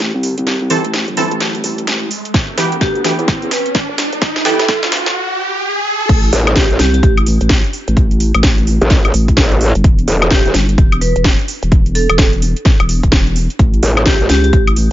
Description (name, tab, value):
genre	bass house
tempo	128 BPM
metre	4/4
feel	swing 61% on 16ths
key	A minor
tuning	A4 = 437 Hz
part	orchestra-hit-like synth stab	stabs	0.0-4.6 s	E3 to A4	-20 LUFS	right 1 dB	built-in reverb, sidechain pumping, tape echo
part	vowel-sweep wobble bass	bass	0.0-14.9 s	E1 to E2	-16 LUFS	equal	chorus, overdrive, sidechain pumping, high-pass filter
part	house drum kit	drums	0.0-14.9 s	crash cymbal, hi-hat, snare drum, woodblock	-17 LUFS	equal	high-pass filter on hats, high-pass filter on snare, high-pass filter on cymbals, high-pass filter on perc, high-pass filter on room
part	riser	sound effects	1.1-6.1 s	none	-21 LUFS	right 1 dB	none
part	electronic kick drum	drums	2.3-14.6 s	none	-12 LUFS	equal	none
part	vibraphone with hard mallets	melody	2.8-7.0, 10.3-14.5 s	G4 to B4	-21 LUFS	right 1 dB	tape echo
part	growl bass	bass	6.3-10.5, 13.8-14.3 s	E1 to A1	-13 LUFS	equal	chorus, overdrive, sidechain pumping
room	little or no reverb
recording	high-pass filter, nothing above 7.5 kHz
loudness	-11 LUFS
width	side -13 dB against mid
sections	0.0-6.1 A section; 6.1-14.9 B section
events	build-up 0.0-6.1; drum fill 0.0-5.2; riser 1.1-6.1; break 5.2-6.1; drop 6.1-14.9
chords	0.0 Am; 2.3 Em; 6.1 N.C.; 13.6 A